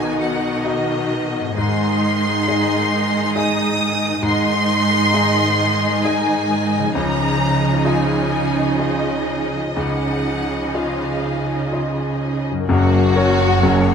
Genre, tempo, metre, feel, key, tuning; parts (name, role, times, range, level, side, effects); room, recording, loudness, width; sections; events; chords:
cinematic, emotional film score for orchestra; 61-68 BPM; 3/4; rubato; A4 = 440 Hz
rich symphonic violin section; melody; 0.0-13.9 s; C#5 to D#6; -22 LUFS; left 2 dB
warm symphonic violin section; second line; 0.0-13.9 s; F#4 to D#5; -25 LUFS; left 1 dB
bright grand piano; accompaniment; 0.0-13.9 s; F#1 to D#5; -23 LUFS; left 3 dB
rich studio viola section; accompaniment; 0.0-13.9 s; D#3 to F#4; -25 LUFS; right 2 dB
rich symphonic cello section; bass; 0.0-13.9 s; F#2 to C#3; -22 LUFS; right 4 dB
concert harp; arpeggios; 1.4-13.9 s; F#2 to D#5; -27 LUFS; left 10 dB
mellow French horn section; sustained chords; 12.7-13.9 s; F#3; -24 LUFS; left 2 dB
rich symphonic double bass section; bass; 12.7-13.9 s; F#1; -22 LUFS; right 4 dB
moderate scoring stage reverb, RT60 1.8 s; -16 LUFS; side -6 dB against mid
0.0-12.7 A section; 12.7-13.9 A section
0.0 B; 1.6 G#; 6.9 C#add9; 12.7 F#